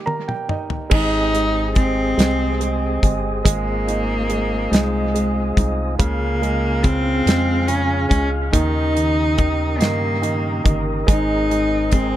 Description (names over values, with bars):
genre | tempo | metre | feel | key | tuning
six-eight pop ballad | 47 BPM (dotted quarters) | 6/8 | straight | Ab major | A4 = 440 Hz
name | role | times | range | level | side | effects
warm grand piano | accompaniment | 0.0-12.2 s | Db3 to Bb5 | -25 LUFS | right 4 dB | none
damped 70s drum kit | drums | 0.1-12.1 s | crash cymbal, hi-hat, kick drum, snare drum, toms | -19 LUFS | equal | none
dark cello | melody | 0.9-12.2 s | Ab3 to Eb4 | -21 LUFS | equal | analog delay
mellow tonewheel organ | sustained chords | 0.9-12.2 s | Db3 to F5 | -26 LUFS | left 1 dB | overdrive, fast rotary speaker
organ-like FM bass | bass | 0.9-12.2 s | G1 to G2 | -23 LUFS | equal | none
room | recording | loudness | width
small room ambience | echo-heavy mix | -17 LUFS | side -12 dB against mid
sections
0.9-12.2 A section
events
break 0.0-0.9; grand piano fill 0.0-0.9; drum fill 0.0-0.9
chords
0.0 Eb; 0.9 Abmaj7; 3.5 Fm7/Ab; 6.0 Db; 8.5 Eb7; 11.1 Abadd9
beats
| 0.92 2.19 | 3.46 4.73 | 6.00 7.27 | 8.54 9.81 | 11.08